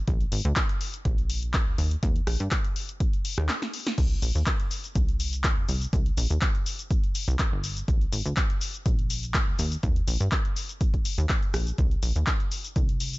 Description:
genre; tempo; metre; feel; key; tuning
piano house; 123 BPM; 4/4; swing 53% on 16ths; unclear; A4 = 439 Hz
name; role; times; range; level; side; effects
plucky analog bass; bass; 0.0-13.2 s; G1 to G2; -27 LUFS; equal; sidechain pumping
electronic kick drum; drums; 0.1-12.9 s; none; -26 LUFS; equal; none
punchy analog drum machine; drums; 0.1-13.2 s; cabasa, crash cymbal, handclaps, hi-hat, rim click, snare drum; -31 LUFS; left 1 dB; none
room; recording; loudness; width
little or no reverb; nothing above 7.8 kHz; -24 LUFS; side -20 dB against mid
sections
0.0-13.2 A section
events
break 3.5-4.0; drum fill 3.5-4.0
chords
none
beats
| 0.08 0.56 1.05 1.54 | 2.03 2.52 3.00 3.49 | 3.98 4.47 4.96 5.44 | 5.93 6.42 6.91 7.39 | 7.88 8.37 8.86 9.35 | 9.83 10.32 10.81 11.30 | 11.78 12.27 12.76

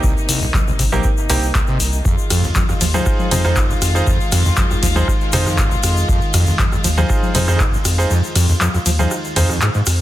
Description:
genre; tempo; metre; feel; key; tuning
acid house; 119 BPM; 4/4; straight; unclear; A4 = 440 Hz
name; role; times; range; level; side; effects
dark studio string section; sustained chords; 0.0-10.0 s; C3 to F4; -25 LUFS; left 2 dB; sidechain pumping
overdriven acid bass; riff; 0.0-9.8 s; F1 to F3; -20 LUFS; equal; distortion, tube saturation, lush chorus, sidechain pumping
bright grand piano; stabs; 0.0-9.5 s; Bb3 to C5; -23 LUFS; right 3 dB; dub echo
electronic kick drum; drums; 0.0-7.7 s; none; -19 LUFS; equal; none
tube shaker; percussion; 0.0-10.0 s; none; -28 LUFS; left 5 dB; none
round analog bass; bass; 0.3-10.0 s; Bb1 to F2; -18 LUFS; equal; sidechain pumping
punchy analog drum machine; drums; 0.3-10.0 s; congas, handclaps, hi-hat, ride cymbal, rim click; -22 LUFS; left 2 dB; none
room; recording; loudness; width
digital ambience; dense, heavily limited modern master; -14 LUFS; side -14 dB against mid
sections
0.0-10.0 A section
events
kick drops out 8.1-10.0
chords
0.0 Cm7; 2.1 Fm7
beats
| 0.04 0.54 1.04 1.55 | 2.05 2.56 3.06 3.57 | 4.07 4.57 5.08 5.58 | 6.09 6.59 7.09 7.60 | 8.10 8.61 9.11 9.62

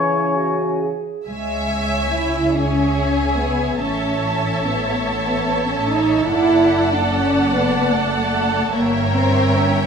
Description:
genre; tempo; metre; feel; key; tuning
classical, slow romantic movement for symphony orchestra; 48 BPM (dotted quarters); 6/8; uneven beats, rubato; C# minor; A4 = 442 Hz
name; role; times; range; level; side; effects
mellow hollow silver concert flute; second line; 0.0-0.9 s; G#5; -29 LUFS; left 1 dB; none
warm clarinet; second line; 0.0-1.3 s; E4 to G#4; -27 LUFS; right 1 dB; none
warm oboe; second line; 0.0-0.8 s; C#5; -21 LUFS; left 3 dB; none
mellow bassoon; accompaniment; 0.0-0.9 s; C#3; -26 LUFS; right 3 dB; none
clear French horn section; sustained chords; 0.0-0.9 s; E3 to C#4; -25 LUFS; left 3 dB; none
warm symphonic violin section; melody; 1.3-9.9 s; G5 to A5; -29 LUFS; left 1 dB; none
warm symphonic violin section; second line; 1.3-9.9 s; G#4 to E5; -24 LUFS; right 1 dB; none
warm symphonic viola section; accompaniment; 1.3-9.9 s; C#5 to F#5; -23 LUFS; left 1 dB; none
dark symphonic cello section; bass; 1.3-9.9 s; G#3 to E4; -20 LUFS; right 1 dB; none
warm symphonic double bass section; bass; 1.3-9.9 s; F#1 to C#2; -23 LUFS; right 2 dB; none
room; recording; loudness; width
wet stone room reverb, RT60 1.5 s; minimal, uncompressed stereo recording; -16 LUFS; side -6 dB against mid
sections
0.0-1.3 A section; 1.3-9.9 A section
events
none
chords
0.0 C#m; 3.8 A; 6.3 D/F#; 8.8 Gdim7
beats
| 1.28 2.57 | 3.84 5.07 | 6.32 7.56 | 8.77

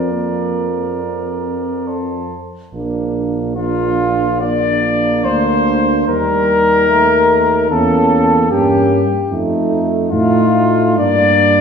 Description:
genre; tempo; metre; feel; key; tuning
classical, brass quintet; 67-75 BPM; 4/4; rubato; Bb major; A4 = 443 Hz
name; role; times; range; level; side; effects
mellow trumpet; melody; 0.0-11.6 s; F4 to D5; -17 LUFS; left 5 dB; none
mellow flugelhorn; second line; 0.0-11.6 s; F4 to D5; -19 LUFS; right 4 dB; none
clear trombone; accompaniment; 0.0-11.6 s; F3 to Bb3; -21 LUFS; right 2 dB; none
warm French horn; accompaniment; 0.0-11.6 s; Bb3 to Eb4; -21 LUFS; equal; none
mellow tuba; bass; 0.0-11.6 s; Bb1 to A2; -19 LUFS; right 1 dB; none
room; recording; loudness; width
wet recital hall reverb, RT60 1.5 s; heard from further back in the room; -12 LUFS; side -6 dB against mid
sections
0.0-2.7 A section; 2.7-11.6 B section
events
none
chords
0.0 Bb/F; 1.0 F; 2.7 Bb; 6.1 Eb; 7.7 Edim7; 9.3 F7; 11.0 Gm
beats
0.11 0.99 1.87 | 2.74 3.57 4.42 5.26 | 6.08 6.89 7.70 8.51 | 9.31 10.13 10.98

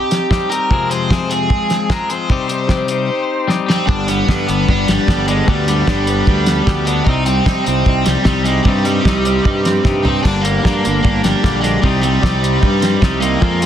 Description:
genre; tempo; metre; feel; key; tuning
indie rock; 151 BPM; 4/4; straight; C minor; A4 = 439 Hz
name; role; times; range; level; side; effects
biting overdriven guitar; melody; 0.0-13.7 s; G3 to C5; -19 LUFS; right 1 dB; none
twangy electric guitar; riff; 0.0-13.7 s; F2 to Ab4; -19 LUFS; left 7 dB; none
cloth-damped thuddy drum kit; drums; 0.1-13.7 s; hi-hat, kick drum, snare drum, splash cymbal, toms; -17 LUFS; equal; none
twelve-string electric guitar; riff; 3.9-13.7 s; G2 to Eb4; -22 LUFS; right 10 dB; lush chorus
fuzz fingered electric bass; bass; 3.9-13.7 s; G1 to C3; -19 LUFS; right 1 dB; overdrive
room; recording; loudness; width
light reverb; dense, heavily limited modern master; -13 LUFS; side -10 dB against mid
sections
0.0-3.9 A section; 3.9-13.7 A section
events
drum fill 3.5-3.9, 9.9-10.3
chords
0.0 Cm; 0.7 Fm; 2.3 Cm; 3.9 G; 7.1 Cm; 10.3 Gm; 11.8 Cm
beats
0.31 | 0.71 1.10 1.50 1.90 | 2.30 2.70 3.10 3.50 | 3.89 4.29 4.69 5.09 | 5.48 5.88 6.28 6.68 | 7.07 7.47 7.87 8.27 | 8.66 9.06 9.46 9.85 | 10.25 10.65 11.04 11.44 | 11.84 12.24 12.63 13.03 | 13.43

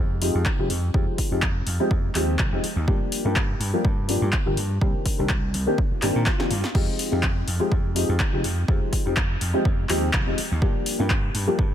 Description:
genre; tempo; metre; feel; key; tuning
filtered disco house; 124 BPM; 4/4; swing 54% on 16ths; F dorian; A4 = 440 Hz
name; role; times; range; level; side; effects
vintage slap bass; bass; 0.0-11.7 s; F1 to Bb2; -26 LUFS; equal; sidechain pumping, low-pass filter
dark baby grand piano; accompaniment; 0.2-11.6 s; Eb3 to G4; -26 LUFS; left 1 dB; phaser, sidechain pumping, low-pass filter
punchy analog drum machine; drums; 0.2-11.5 s; crash cymbal, handclaps, hi-hat, snare drum; -28 LUFS; left 1 dB; overdrive, sidechain pumping on hats, sidechain pumping on cymbals
electronic kick drum; drums; 0.5-11.7 s; none; -24 LUFS; equal; overdrive
swell; sound effects; 5.9-6.7 s; none; -36 LUFS; left 1 dB; none
room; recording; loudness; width
light reverb; none; -21 LUFS; side -10 dB against mid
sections
0.0-11.7 A section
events
filter sweep 0.0-11.7; swell 5.9-6.7; drum fill 6.3-6.7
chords
0.0 Fm7; 2.9 Gm7; 4.8 Cm9; 6.7 Fm7; 10.6 Gm7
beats
0.46 | 0.94 1.43 1.91 2.40 | 2.88 3.36 3.85 4.33 | 4.81 5.30 5.78 6.27 | 6.75 7.23 7.72 8.20 | 8.69 9.17 9.65 10.14 | 10.62 11.10 11.59

